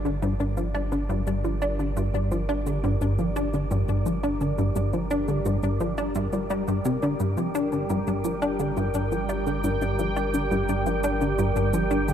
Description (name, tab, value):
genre	ambient, sequencer-driven space music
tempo	86 BPM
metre	4/4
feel	straight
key	G minor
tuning	A4 = 440 Hz
part	sweeping resonant pad	sustained chords	0.0-12.1 s	G3 to G5	-30 LUFS	equal	chorus
part	plucky analog bass	riff	0.0-12.1 s	G2 to D4	-25 LUFS	equal	analog chorus, ping-pong delay
part	warm sub bass	bass	0.0-12.1 s	G1	-32 LUFS	equal	none
part	shaker and bongos	percussion	0.0-12.1 s	none	-42 LUFS	right 3 dB	ping-pong delay
part	wind-like tuned noise texture	texture	0.0-12.1 s	D5	-38 LUFS	right 5 dB	built-in reverb
room	moderate cathedral reverb, RT60 4.8 s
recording	in a vast, echoing space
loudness	-23 LUFS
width	side -9 dB against mid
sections	0.0-12.1 A section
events	fade-in on analog synth pad 0.0-12.1; fade-in on synth texture 0.0-12.1; fade-in on drum 0.0-12.1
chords	0.0 Gm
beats	0.22 0.92 | 1.62 2.31 3.01 3.71 | 4.41 5.11 5.80 6.50 | 7.20 7.90 8.59 9.29 | 9.99 10.69 11.38 12.08